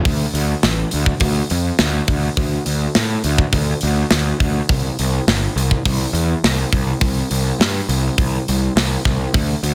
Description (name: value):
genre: heavy metal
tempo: 103 BPM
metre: 4/4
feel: straight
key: D minor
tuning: A4 = 440 Hz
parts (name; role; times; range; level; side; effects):
- fuzz picked electric bass; bass; 0.0-9.7 s; G1 to A2; -21 LUFS; equal; overdrive
- tight metal drum kit; drums; 0.1-9.7 s; hi-hat, kick drum, snare drum; -21 LUFS; equal; none
room: little or no reverb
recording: dense, heavily limited modern master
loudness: -18 LUFS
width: mono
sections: 0.1-9.7 A section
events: none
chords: none